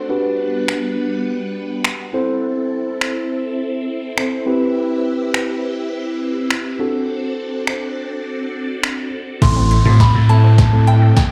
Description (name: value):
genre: dance-pop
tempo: 103 BPM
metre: 4/4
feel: straight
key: A dorian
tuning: A4 = 440 Hz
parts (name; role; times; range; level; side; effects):
- mellow tine electric piano; accompaniment; 0.0-11.2 s; A3 to C5; -24 LUFS; equal; sidechain pumping
- phased string machine; sustained chords; 0.0-11.3 s; G3 to F#5; -28 LUFS; equal; ensemble chorus, phaser, sidechain pumping
- smooth R&B drum kit; drums; 0.7-11.3 s; crash cymbal, finger snaps, hi-hat, kick drum, snare drum; -19 LUFS; equal; overdrive
- soft synth bell; melody; 9.4-11.3 s; G5 to C6; -23 LUFS; equal; chorus, slapback echo
- unison pluck; arpeggios; 9.4-11.2 s; A3 to A5; -32 LUFS; equal; sidechain pumping, digital delay, slapback echo
- vintage slap bass; bass; 9.4-11.1 s; A1 to A2; -13 LUFS; equal; sidechain pumping
- riser and downlifter; sound effects; 9.4-11.3 s; none; -30 LUFS; equal; slapback echo
room: light reverb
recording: live gig heard through the venue's PA, club reverb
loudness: -18 LUFS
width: mono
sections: 0.0-9.4 A section; 9.4-11.3 B section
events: build-up 9.4-11.3; drum fill 9.4-11.3; riser 9.4-11.3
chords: 0.1 Gmaj7; 2.1 Am; 4.5 Cmaj7; 6.8 D7; 9.4 Am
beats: | 0.10 0.68 1.26 1.85 | 2.43 3.01 3.59 4.18 | 4.76 5.34 5.92 6.51 | 7.09 7.67 8.26 8.84 | 9.42 10.00 10.59 11.17